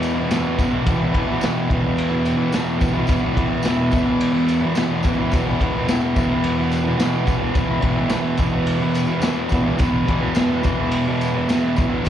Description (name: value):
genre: garage rock duo or trio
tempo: 107 BPM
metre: 4/4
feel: straight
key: unclear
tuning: A4 = 440 Hz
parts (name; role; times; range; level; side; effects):
- fuzz guitar; riff; 0.0-12.1 s; E2 to E3; -19 LUFS; equal; distortion
- raw garage drum kit; drums; 0.0-12.1 s; kick drum, ride cymbal, snare drum; -23 LUFS; equal; vintage 12-bit sampler grit
- tambourine; percussion; 0.0-12.1 s; none; -41 LUFS; left 3 dB; none
room: light reverb, studio reverb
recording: live gig heard through the venue's PA, cassette tape, club reverb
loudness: -17 LUFS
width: side -10 dB against mid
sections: 0.0-12.1 A section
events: none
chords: 0.0 E5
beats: 0.30 | 0.85 1.41 1.97 2.52 | 3.08 3.64 4.20 4.75 | 5.31 5.87 6.43 6.99 | 7.55 8.11 8.68 9.24 | 9.80 10.37 10.93 11.49 | 12.06